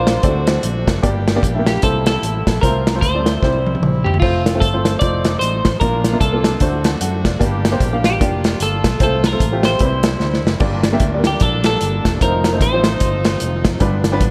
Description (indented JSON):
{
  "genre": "uptempo gospel",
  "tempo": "150 BPM",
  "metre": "4/4",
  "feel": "swing 60% on 8ths",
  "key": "F major",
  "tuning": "A4 = 439 Hz",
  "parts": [
    { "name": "clean electric guitar", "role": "melody", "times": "0.0-13.6 s", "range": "F4 to D5", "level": "-24 LUFS", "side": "equal", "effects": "analog chorus" },
    { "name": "warm grand piano", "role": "accompaniment", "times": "0.0-14.3 s", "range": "G2 to A5", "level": "-24 LUFS", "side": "equal", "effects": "subtle chorus" },
    { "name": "muted French horn section", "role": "sustained chords", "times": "0.0-14.3 s", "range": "D3 to G4", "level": "-33 LUFS", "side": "equal", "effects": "none" },
    { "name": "fingered electric bass", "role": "bass", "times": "0.0-14.3 s", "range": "E1 to F#2", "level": "-23 LUFS", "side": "equal", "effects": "none" },
    { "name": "modern studio drum kit", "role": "drums", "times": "0.1-14.3 s", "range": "crash cymbal, hi-hat, kick drum, snare drum, splash cymbal, toms", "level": "-20 LUFS", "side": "equal", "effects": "gated reverb" },
    { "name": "tonewheel organ", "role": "sustained chords", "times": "10.6-14.3 s", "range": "D3 to F4", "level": "-29 LUFS", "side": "equal", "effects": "none" }
  ],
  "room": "light reverb, small room ambience",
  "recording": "bright 1980s-style digital production",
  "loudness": "-16 LUFS",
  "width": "mono",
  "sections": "0.0-14.3 A section",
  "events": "drum fill 3.4-4.2, 10.2-10.6; grand piano fill 6.6-7.4",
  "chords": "0.2 D7; 1.0 Gm; 1.8 C7; 2.6 F/C; 3.4 C; 4.2 F; 5.0 F7; 5.8 Bb; 6.6 D7; 7.4 Gm; 8.2 Bb/F; 9.0 F/C; 9.8 C; 10.6 Gm; 12.2 F7",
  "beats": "0.23 0.63 | 1.03 1.43 1.82 2.22 | 2.62 3.02 3.42 3.82 | 4.22 4.62 5.01 5.41 | 5.81 6.21 6.61 7.01 | 7.41 7.81 8.21 8.61 | 9.01 9.41 9.81 10.21 | 10.61 11.01 11.41 11.81 | 12.21 12.61 13.01 13.41 | 13.81 14.21"
}